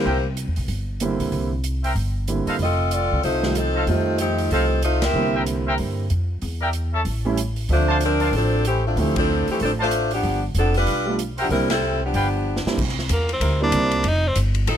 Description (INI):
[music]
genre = jazz, big band swing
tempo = 189 BPM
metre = 4/4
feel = swing 61% on 8ths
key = C mixolydian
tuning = A4 = 442 Hz
[part]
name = warm saxophone section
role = melody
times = 0.0-0.3, 2.6-5.4, 7.7-12.7 s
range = E3 to E5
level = -22 LUFS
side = left 1 dB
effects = none
[part]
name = warm baby grand piano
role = accompaniment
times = 0.0-14.0 s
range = D3 to E5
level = -25 LUFS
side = right 4 dB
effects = none
[part]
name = warm trumpet section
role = stabs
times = 0.0-12.3 s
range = A4 to A5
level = -26 LUFS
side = equal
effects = none
[part]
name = upright bass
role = bass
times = 0.1-14.8 s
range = F1 to G2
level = -23 LUFS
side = equal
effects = none
[part]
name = swinging big-band drum kit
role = drums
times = 0.4-14.8 s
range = crash cymbal, hi-hat, kick drum, ride cymbal, snare drum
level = -31 LUFS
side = right 1 dB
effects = none
[part]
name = edgy tenor saxophone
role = melody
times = 13.1-14.4 s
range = Bb3 to Eb4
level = -22 LUFS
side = equal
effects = none
[part]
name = warm saxophone section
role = sustained chords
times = 13.4-14.8 s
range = F3 to Bb4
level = -28 LUFS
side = equal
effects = none
[sound]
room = little or no reverb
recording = close, detailed microphones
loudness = -19 LUFS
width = side -9 dB against mid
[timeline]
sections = 0.0-12.8 A section; 12.8-14.8 B section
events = band accent 5.0, 9.1, 11.7; drum fill 12.5-12.8; tenor saxophone solo 12.8-14.8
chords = 0.1 C7; 2.6 F7; 5.1 C7; 6.4 Em7b5; 7.1 A7; 7.7 Dm7; 10.2 G7; 11.5 C7; 12.1 G7; 12.8 C7; 14.0 F7